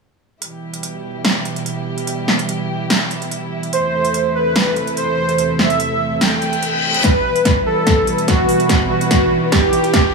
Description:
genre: heavy wobble dubstep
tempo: 145 BPM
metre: 4/4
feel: swing 53% on 16ths, half-time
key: E minor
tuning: A4 = 440 Hz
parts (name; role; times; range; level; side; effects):
- dark chamber string section; sustained chords; 0.4-10.1 s; E2 to B4; -21 LUFS; right 1 dB; sidechain pumping
- big-room dance drum kit; drums; 0.4-10.0 s; hi-hat, snare drum; -18 LUFS; right 1 dB; none
- soft supersaw; melody; 3.7-10.1 s; F#4 to G5; -17 LUFS; right 1 dB; digital delay
- reverse cymbal and riser; sound effects; 6.4-10.1 s; none; -24 LUFS; left 1 dB; none
- electronic kick drum; drums; 7.0-10.0 s; none; -18 LUFS; equal; none
room: light reverb, digital ambience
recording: small room ambience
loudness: -14 LUFS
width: side -3 dB against mid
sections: 0.4-7.0 A section; 7.0-10.1 B section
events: reverse cymbal 6.4-7.0; build-up 7.0-10.1; drum fill 7.0-10.1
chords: 0.4 Em; 3.7 Am/E; 7.0 Em

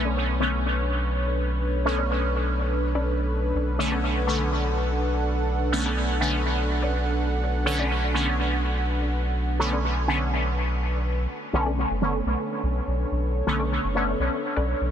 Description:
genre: dub techno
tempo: 124 BPM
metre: 4/4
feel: swing 55% on 16ths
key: B minor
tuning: A4 = 440 Hz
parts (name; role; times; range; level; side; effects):
- dark analog pad; sustained chords; 0.1-14.9 s; D4 to F#5; -30 LUFS; right 1 dB; chorus
- filtered dub chord stab; riff; 0.0-14.7 s; C#4 to D5; -38 LUFS; left 3 dB; none
- soft dub sub bass; bass; 0.0-14.9 s; F#1 to B1; -26 LUFS; equal; none
- resonant sweep polysynth; stabs; 0.4-14.0 s; D3 to C#4; -27 LUFS; equal; chorus, phaser, dub echo
room: light reverb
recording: dense, heavily limited modern master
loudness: -22 LUFS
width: side -9 dB against mid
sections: 0.0-11.3 A section; 11.3-14.9 B section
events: none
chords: 0.0 Bm9

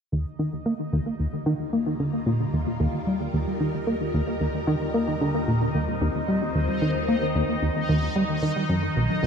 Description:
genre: ambient, sequencer-driven space music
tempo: 112 BPM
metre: 4/4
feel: straight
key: Eb major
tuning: A4 = 439 Hz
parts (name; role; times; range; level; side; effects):
- phased string machine; sustained chords; 0.1-9.3 s; Eb3 to Bb4; -30 LUFS; equal; ensemble chorus, phaser
- plucky analog bass; riff; 0.1-9.3 s; B1 to Bb3; -24 LUFS; equal; wide subtle chorus, tape echo
- warm sub bass; bass; 0.1-9.3 s; B1 to Eb2; -41 LUFS; equal; none
- bubbling stepped-filter texture; texture; 0.1-9.3 s; Eb4 to Eb5; -34 LUFS; equal; chorus, built-in reverb
room: moderate concert hall reverb, RT60 2.2 s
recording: none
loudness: -23 LUFS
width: side -6 dB against mid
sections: 0.1-9.3 A section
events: fade-in on string machine 0.1-9.3; fade-in on sub bass 0.1-9.3; fade-in on synth texture 0.1-9.3; filter sweep on analog synth bass 0.1-9.3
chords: 0.1 Ebadd9; 8.7 B

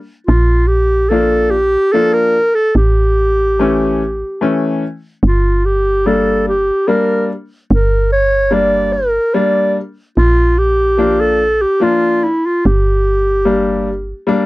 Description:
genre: klezmer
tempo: 73 BPM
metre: 3/4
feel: straight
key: G dorian sharp4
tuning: A4 = 437 Hz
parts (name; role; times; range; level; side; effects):
- dark clarinet; melody; 0.3-14.3 s; E4 to D5; -14 LUFS; equal; none
- woody FM bass; bass; 0.3-14.1 s; G1 to Bb1; -16 LUFS; equal; none
- clear upright piano; accompaniment; 1.1-14.5 s; E3 to D4; -16 LUFS; left 3 dB; none
room: little or no reverb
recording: dry, close 1970s-style studio recording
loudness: -12 LUFS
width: side -19 dB against mid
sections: 0.0-14.5 A section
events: none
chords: 0.3 Bb; 2.8 A; 5.2 Gm; 10.2 Bb; 12.6 Gm

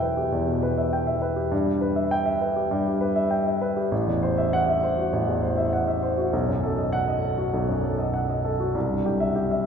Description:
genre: classical, virtuoso piano study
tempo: 99 BPM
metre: 4/4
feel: rubato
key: E minor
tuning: A4 = 440 Hz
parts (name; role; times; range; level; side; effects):
- warm baby grand piano; solo; 0.0-9.7 s; A1 to G5; -22 LUFS; equal; none
room: wet cathedral reverb, RT60 5.5 s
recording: recorded in a church or concert hall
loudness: -22 LUFS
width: side -7 dB against mid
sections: 0.0-9.7 A section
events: none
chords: 0.0 Em; 1.5 Em/G; 3.9 F#m7b5/A; 6.3 B7; 8.7 C

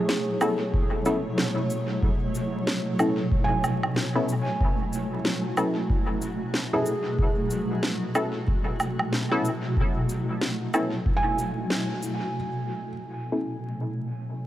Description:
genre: ambient dub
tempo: 93 BPM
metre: 4/4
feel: swing 60% on 16ths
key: unclear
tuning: A4 = 436 Hz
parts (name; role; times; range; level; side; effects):
- granular cloud pad; sustained chords; 0.0-14.5 s; B2 to C#5; -28 LUFS; equal; built-in reverb
- felt-muted upright piano; arpeggios; 0.0-12.9 s; G#4 to G#5; -33 LUFS; right 2 dB; dub echo
- electronic snare drum, cabasa and woodblock; drums; 0.1-12.2 s; none; -31 LUFS; right 1 dB; low-pass filter on perc, low-pass filter on snare, dub echo
- filtered dub chord stab; stabs; 0.4-13.5 s; B3 to A4; -30 LUFS; left 2 dB; analog chorus, dub echo
- electronic kick drum; drums; 0.7-11.2 s; none; -26 LUFS; equal; none
room: light reverb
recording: vinyl crackle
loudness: -24 LUFS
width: side -13 dB against mid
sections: 0.0-12.3 A section; 12.3-14.5 B section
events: band accent 11.7-12.0; filter sweep on drum 12.3-14.5; filter sweep on synth stab 12.3-14.5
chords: 0.0 B9sus4

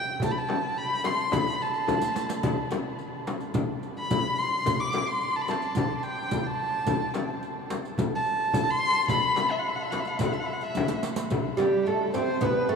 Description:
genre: Turkish makam ensemble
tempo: 108 BPM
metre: 4/4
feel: straight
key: unclear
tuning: A4 = 440 Hz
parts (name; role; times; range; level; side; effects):
- dark violin; melody; 0.0-12.8 s; G4 to D6; -27 LUFS; equal; none
- darbuka; percussion; 0.1-12.8 s; none; -35 LUFS; right 2 dB; none
- frame drum; percussion; 0.2-12.6 s; none; -30 LUFS; left 5 dB; none
- riq; percussion; 0.2-12.8 s; none; -38 LUFS; right 6 dB; none
- oud; second line; 11.6-12.8 s; G3 to C4; -26 LUFS; right 5 dB; none
room: wet huge ambient reverb, RT60 8.4 s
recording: in a vast, echoing space, studio ambience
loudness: -25 LUFS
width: side -5 dB against mid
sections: 0.0-11.3 A section; 11.3-12.8 B section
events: drum fill 1.9-2.4, 10.8-11.3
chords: none

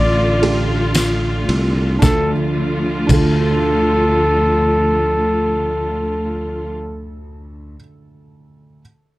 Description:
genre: pop ballad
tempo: 56 BPM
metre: 4/4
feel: straight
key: D minor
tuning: A4 = 440 Hz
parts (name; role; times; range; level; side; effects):
- mellow flugelhorn; melody; 0.0-7.1 s; A4 to D5; -19 LUFS; equal; none
- felt-muted upright piano; accompaniment; 0.0-8.8 s; D2 to A4; -21 LUFS; right 2 dB; none
- warm studio string section; sustained chords; 0.0-6.7 s; D3 to F4; -21 LUFS; left 1 dB; none
- sustaining fretless electric bass; bass; 0.0-7.8 s; A1 to D2; -20 LUFS; equal; none
- dusty soul sampler-style drum kit; drums; 0.4-3.4 s; crash cymbal, kick drum, ride cymbal, snare drum; -22 LUFS; equal; none
- tambourine; percussion; 0.9-3.4 s; none; -28 LUFS; left 7 dB; none
room: little or no reverb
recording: dry, close 1970s-style studio recording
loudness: -14 LUFS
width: side -18 dB against mid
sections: 0.0-2.0 A section; 2.0-6.3 B section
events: slowing down 0.0-2.0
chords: 0.0 Dm

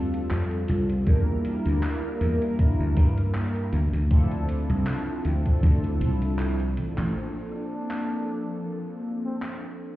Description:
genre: vaporwave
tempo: 79 BPM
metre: 4/4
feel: swing 55% on 16ths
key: unclear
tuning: A4 = 440 Hz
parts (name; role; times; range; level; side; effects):
- mellow synth brass; accompaniment; 0.0-10.0 s; F3 to Bb4; -29 LUFS; equal; phaser, wide subtle chorus, cassette tape, tape echo
- dry thumbed slap bass; bass; 0.0-7.1 s; A1 to G2; -25 LUFS; equal; none
- gated 80s digital drum machine; drums; 0.1-9.6 s; handclaps, hi-hat; -41 LUFS; equal; gated reverb, vintage 12-bit sampler grit
- electronic kick drum; drums; 1.1-5.8 s; none; -20 LUFS; equal; vintage 12-bit sampler grit
- breathy flugelhorn; melody; 7.5-9.6 s; C4 to D4; -38 LUFS; left 1 dB; tape echo
room: little or no reverb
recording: heard muffled through a wall, stone room reverb, cassette tape, EQ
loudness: -23 LUFS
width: side -16 dB against mid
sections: 0.0-7.2 A section; 7.2-10.0 B section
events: drum fill 6.4-7.2; band accent 7.0-7.3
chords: 0.0 F69; 1.1 Em7b5; 3.7 Dm9; 7.2 Bbmaj9

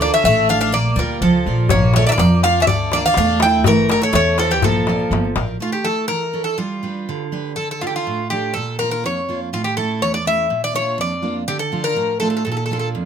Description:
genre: greek folk, Greek bouzouki band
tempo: 123 BPM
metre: 2/4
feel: straight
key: unclear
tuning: A4 = 440 Hz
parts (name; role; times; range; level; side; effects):
- Greek bouzouki; melody; 0.0-12.9 s; F4 to G5; -19 LUFS; left 1 dB; plate reverb
- Greek bouzouki; second line; 0.0-5.3 s; E3 to E4; -23 LUFS; equal; none
- picked steel-string acoustic guitar; accompaniment; 0.0-13.1 s; E2 to D5; -22 LUFS; right 3 dB; none
- upright bass; bass; 0.0-5.6 s; G1 to F2; -20 LUFS; equal; none
- darbuka; percussion; 1.7-5.5 s; none; -21 LUFS; left 6 dB; none
room: light reverb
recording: close, detailed microphones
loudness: -16 LUFS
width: side -8 dB against mid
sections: 0.0-5.6 A section; 5.6-13.1 B section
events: none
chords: 0.0 Dm; 0.7 Bb; 2.7 Dm; 3.6 A; 4.6 Bb; 5.6 A; 6.6 G; 7.6 Dm; 8.5 Bb; 9.5 A; 10.5 Bb; 11.5 Dm; 12.5 Bb

